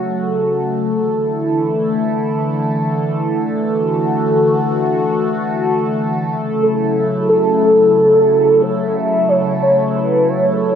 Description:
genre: synthwave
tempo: 90 BPM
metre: 4/4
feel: straight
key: F# minor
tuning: A4 = 439 Hz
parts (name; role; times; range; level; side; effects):
- phased analog pad; sustained chords; 0.0-10.8 s; C#3 to A4; -16 LUFS; equal; phaser, chorus
- warm velvety synth lead; melody; 6.6-10.8 s; A4 to E5; -13 LUFS; equal; chorus, digital delay
room: moderate lush hall reverb, RT60 2.6 s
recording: dark, warm production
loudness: -13 LUFS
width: side -8 dB against mid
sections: 0.0-10.8 A section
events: none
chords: 0.0 F#m; 1.0 Dsus2; 6.3 F#m7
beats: 0.29 | 0.96 1.62 2.29 2.96 | 3.62 4.29 4.96 5.62 | 6.29 6.96 7.62 8.29 | 8.96 9.62 10.29

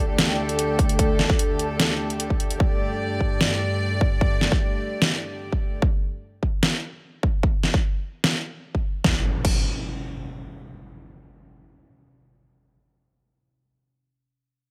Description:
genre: heavy wobble dubstep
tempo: 149 BPM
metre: 4/4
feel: half-time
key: unclear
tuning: A4 = 439 Hz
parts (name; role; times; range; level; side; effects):
- rich chamber string section; sustained chords; 0.0-5.8 s; D2 to D5; -29 LUFS; equal; sidechain pumping
- granular cloud pad; texture; 0.0-2.6 s; A4 to G5; -35 LUFS; equal; built-in reverb, sidechain pumping
- dubstep drum kit; drums; 0.2-9.6 s; crash cymbal, hi-hat, snare drum; -25 LUFS; equal; overdrive
- electronic kick drum; drums; 0.8-9.6 s; none; -24 LUFS; equal; overdrive
- impact; sound effects; 9.0-13.6 s; none; -33 LUFS; equal; none
room: light reverb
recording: none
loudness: -23 LUFS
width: mono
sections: 0.0-9.0 A section; 9.0-12.3 B section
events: none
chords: 0.0 Dsus4; 2.6 Gsus2; 5.8 N.C.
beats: 0.18 0.59 | 0.99 1.39 1.79 2.20 | 2.60 3.00 3.41 3.81 | 4.21 4.61 5.02 5.42 | 5.82 6.22 6.63 7.03 | 7.43 7.84 8.24 8.64 | 9.04 9.45 9.85 10.25 | 10.65 11.06 11.46 11.86

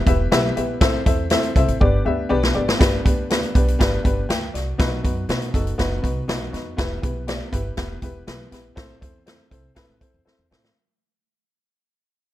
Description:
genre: uptempo 1960s-style soul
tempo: 121 BPM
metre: 4/4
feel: straight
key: G major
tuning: A4 = 440 Hz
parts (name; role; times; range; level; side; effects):
- dark upright piano; accompaniment; 0.1-10.7 s; B3 to G5; -24 LUFS; left 2 dB; none
- upright bass; bass; 0.1-10.7 s; E1 to B2; -25 LUFS; equal; none
- swinging big-band drum kit; drums; 0.1-10.8 s; hi-hat, kick drum, snare drum; -21 LUFS; equal; none
room: little or no reverb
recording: none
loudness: -18 LUFS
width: side -14 dB against mid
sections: 0.0-2.8 A section; 2.8-10.8 B section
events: drum fill 1.8-2.8, 10.3-10.8; fade-out 2.8-10.8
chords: 0.0 Em; 0.8 Am; 1.8 G; 4.8 B; 6.8 Em; 8.8 Am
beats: 0.32 | 0.81 1.31 1.81 2.31 | 2.80 3.30 3.80 4.29 | 4.79 5.29 5.79 6.28 | 6.78 7.28 7.78 8.27 | 8.77 9.27 9.77 10.26

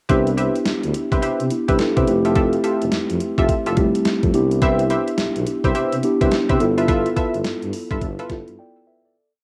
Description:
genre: R&B, new jack swing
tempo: 106 BPM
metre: 4/4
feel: swing 63% on 16ths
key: C major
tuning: A4 = 440 Hz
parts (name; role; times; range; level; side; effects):
- mellow tine electric piano; accompaniment; 0.1-9.3 s; G3 to G5; -23 LUFS; equal; cassette tape
- funky polysynth comp; stabs; 0.1-8.3 s; F4 to E5; -26 LUFS; equal; chorus, cassette tape
- mellow tuba; bass; 0.1-8.6 s; F1 to C3; -26 LUFS; equal; none
- crisp 8-bit digital drum machine; drums; 0.1-8.6 s; hi-hat, kick drum, snare drum; -26 LUFS; equal; overdrive, cassette tape
room: light reverb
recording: home recording on cassette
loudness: -19 LUFS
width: mono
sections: 0.1-9.1 verse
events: fade-out 6.9-9.1; break 8.6-9.1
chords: 0.1 Cmaj7; 2.1 Fmaj9; 4.3 Cmaj7; 6.6 G13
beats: | 0.09 0.66 1.22 1.79 | 2.36 2.92 3.49 4.05 | 4.62 5.19 5.75 6.32 | 6.88 7.45 8.02 8.58

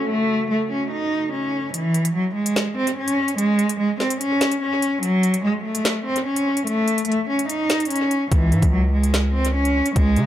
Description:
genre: hip hop, drill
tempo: 146 BPM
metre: 4/4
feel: half-time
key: C# harmonic minor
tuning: A4 = 440 Hz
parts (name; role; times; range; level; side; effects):
- warm cello; melody; 0.0-10.3 s; E3 to D#4; -20 LUFS; equal; low-pass filter, dub echo
- hollow soft pad; sustained chords; 0.0-1.7 s; C#3 to A4; -31 LUFS; right 2 dB; chorus, low-pass filter
- drill drum kit; drums; 1.7-10.3 s; hi-hat, kick drum, snare drum; -25 LUFS; equal; overdrive, dub echo
- distorted 808-style bass; bass; 8.3-10.3 s; C#2 to C#3; -20 LUFS; equal; distortion
room: light reverb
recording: echo-heavy mix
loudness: -18 LUFS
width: side -12 dB against mid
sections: 0.0-1.7 A section; 1.7-10.3 B section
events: kick muted 1.7-8.3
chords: 0.0 F#m; 1.7 N.C.; 8.3 C#5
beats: | 0.10 0.51 0.92 1.33 | 1.74 2.15 2.56 2.97 | 3.38 3.79 4.21 4.62 | 5.03 5.44 5.85 6.26 | 6.67 7.08 7.49 7.91 | 8.32 8.73 9.14 9.55 | 9.96

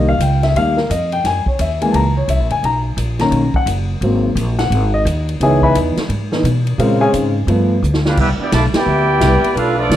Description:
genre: jazz, big band swing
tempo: 173 BPM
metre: 4/4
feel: swing 63% on 8ths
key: unclear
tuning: A4 = 436 Hz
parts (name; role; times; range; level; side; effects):
- warm grand piano; accompaniment; 0.0-7.7 s; Db3 to Cb6; -16 LUFS; left 2 dB; none
- upright bass; bass; 0.0-10.0 s; Gb1 to Cb3; -17 LUFS; equal; none
- swinging big-band drum kit; drums; 0.2-10.0 s; crash cymbal, hi-hat, kick drum, ride cymbal, snare drum; -23 LUFS; equal; none
- warm trumpet section; melody; 8.1-10.0 s; B3 to A5; -17 LUFS; right 2 dB; none
- warm trombone section; second line; 8.1-10.0 s; F3 to G4; -19 LUFS; left 1 dB; none
- clear saxophone section; sustained chords; 9.2-10.0 s; C3 to B4; -22 LUFS; right 1 dB; none
room: moderate large studio reverb, RT60 1.3 s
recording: dark, warm production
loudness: -13 LUFS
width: side -12 dB against mid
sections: 0.0-8.2 A section; 8.2-10.0 B section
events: grand piano solo 0.0-8.2; drum fill 7.8-8.2; band accent 8.7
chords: 0.0 Cm7; 1.2 Gb7; 2.6 Bmaj9; 4.0 Ab7; 5.4 Dbm7; 6.8 Bbm7; 7.5 G7; 8.2 Cmaj9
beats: 0.20 0.55 0.90 | 1.24 1.59 1.94 2.28 | 2.63 2.98 3.33 3.67 | 4.02 4.37 4.71 5.06 | 5.41 5.75 6.10 6.44 | 6.79 7.14 7.48 7.83 | 8.18 8.52 8.87 9.21 | 9.56 9.91

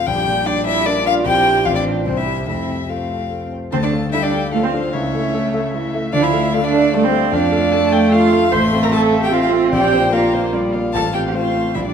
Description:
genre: quick classical-period movement for piano quintet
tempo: 149 BPM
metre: 3/4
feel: straight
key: F major, D minor from 3.7 s, F major from 8.5 s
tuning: A4 = 439 Hz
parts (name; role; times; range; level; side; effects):
- warm violin; melody; 0.0-11.9 s; A4 to C6; -21 LUFS; left 7 dB; none
- warm violin; second line; 0.0-11.9 s; C4 to A5; -26 LUFS; left 3 dB; none
- dark concert grand piano; accompaniment; 0.0-11.9 s; A1 to F5; -21 LUFS; left 2 dB; none
- warm viola; accompaniment; 0.0-11.9 s; E3 to C4; -22 LUFS; right 1 dB; none
- rich cello; second line; 0.1-11.9 s; A3 to C5; -19 LUFS; right 7 dB; none
room: wet recital hall reverb, RT60 1.4 s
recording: none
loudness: -14 LUFS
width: side -7 dB against mid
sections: 0.0-3.7 A section; 3.7-11.9 B section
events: none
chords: 0.1 Gm/Bb; 1.3 C7/Bb; 1.7 F/A; 2.1 C; 2.5 F; 3.7 Dm; 4.9 A/C#; 6.1 Dm; 7.3 Dm/F; 8.5 F/A; 9.7 Bb; 10.9 F/A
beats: | 0.08 0.47 0.87 | 1.26 1.66 2.07 | 2.48 2.90 3.32 | 3.73 4.13 4.54 | 4.94 5.34 5.74 | 6.13 6.53 6.93 | 7.32 7.72 8.12 | 8.52 8.92 9.32 | 9.72 10.13 10.53 | 10.94 11.34 11.75

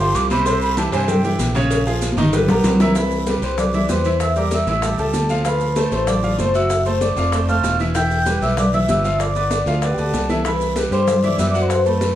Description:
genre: Afro-Cuban jazz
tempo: 192 BPM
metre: 4/4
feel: straight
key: C major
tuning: A4 = 440 Hz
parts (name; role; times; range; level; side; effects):
- breathy mellow jazz flute; second line; 0.0-12.2 s; G5 to G6; -24 LUFS; right 2 dB; none
- bright grand piano; accompaniment; 0.0-12.1 s; C3 to F#5; -22 LUFS; right 1 dB; none
- fingered electric bass; bass; 0.0-12.1 s; E1 to G2; -22 LUFS; equal; none
- congas; percussion; 0.0-12.2 s; none; -23 LUFS; equal; none
- maracas; percussion; 0.0-12.2 s; none; -35 LUFS; right 6 dB; none
- cowbell and bongos; percussion; 0.1-12.2 s; none; -27 LUFS; left 3 dB; none
- guiro; percussion; 0.1-12.2 s; none; -35 LUFS; left 5 dB; none
- vibraphone with soft mallets; melody; 2.5-12.2 s; G4 to G5; -22 LUFS; left 2 dB; none
room: moderate large studio reverb, RT60 1.1 s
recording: band playing live in one room, vinyl crackle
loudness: -16 LUFS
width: side -12 dB against mid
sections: 0.0-3.0 A section; 3.0-12.2 B section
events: flute solo 0.0-3.0; drum fill 2.0-3.0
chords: 0.5 C; 1.7 Bbm7; 2.3 Gm6; 3.0 Cmaj9; 4.2 Edim; 4.8 A7b13; 5.5 Dm7; 6.7 F#dim; 7.3 F; 8.0 Em; 9.2 G9; 10.4 Cmaj7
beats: 0.15 | 0.46 0.78 1.09 1.40 | 1.71 2.02 2.33 2.64 | 2.96 3.27 3.58 3.89 | 4.20 4.52 4.83 5.14 | 5.45 5.76 6.08 6.39 | 6.70 7.01 7.33 7.64 | 7.95 8.26 8.58 8.89 | 9.20 9.51 9.83 10.14 | 10.45 10.76 11.07 11.39 | 11.70 12.01

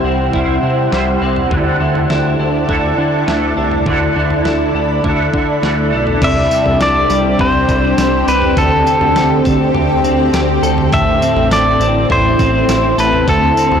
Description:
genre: dream pop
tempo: 102 BPM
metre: 4/4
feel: straight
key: unclear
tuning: A4 = 441 Hz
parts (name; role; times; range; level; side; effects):
- clean electric guitar; accompaniment; 0.0-6.7 s; C3 to C5; -20 LUFS; right 2 dB; harmonic tremolo, ensemble chorus
- shimmering ambient pad; sustained chords; 0.0-13.8 s; C3 to B5; -17 LUFS; equal; chorus, built-in reverb
- clean electric guitar; arpeggios; 0.0-13.8 s; A2 to A4; -19 LUFS; left 3 dB; ensemble chorus, tape echo
- fat analog bass; bass; 0.0-13.8 s; A1 to D3; -19 LUFS; equal; transformer saturation
- detuned 8-bit digital drum machine; drums; 0.3-13.8 s; crash cymbal, kick drum, snare drum, tambourine, toms; -21 LUFS; right 1 dB; none
- pedal steel guitar; melody; 6.2-13.8 s; A4 to E5; -15 LUFS; equal; tape echo
room: moderate huge ambient reverb, RT60 4.3 s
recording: blown-out, overdriven recording, overdrive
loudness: -11 LUFS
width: side -7 dB against mid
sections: 0.0-6.2 A section; 6.2-13.8 B section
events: none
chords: 0.0 C; 1.5 Dsus2; 6.2 Csus2; 8.6 D7sus4; 10.9 Am; 13.3 D7sus4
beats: 0.34 0.92 | 1.51 2.10 2.69 3.28 | 3.87 4.45 5.04 5.63 | 6.22 6.81 7.39 7.98 | 8.57 9.16 9.75 10.34 | 10.92 11.51 12.10 12.69 | 13.28

